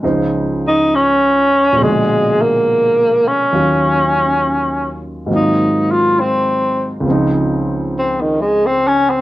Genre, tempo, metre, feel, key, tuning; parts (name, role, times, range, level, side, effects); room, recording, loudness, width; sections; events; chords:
jazz ballad; 68 BPM; 4/4; swing 67% on 8ths; Db major; A4 = 440 Hz
warm grand piano; accompaniment; 0.0-9.2 s; Db2 to C5; -18 LUFS; equal
breathy tenor saxophone; melody; 0.7-9.2 s; Eb3 to F4; -13 LUFS; equal
moderate club reverb, RT60 0.5 s; worn, warbling old tape, cassette tape, warbly pitch drift; -12 LUFS; side -16 dB against mid
0.0-7.1 A section; 7.1-9.2 B section
tenor saxophone solo 7.1-9.2
0.0 Dbmaj7; 1.8 Bb7b9; 3.5 Ebm7; 5.3 Ab13; 7.1 Dbmaj7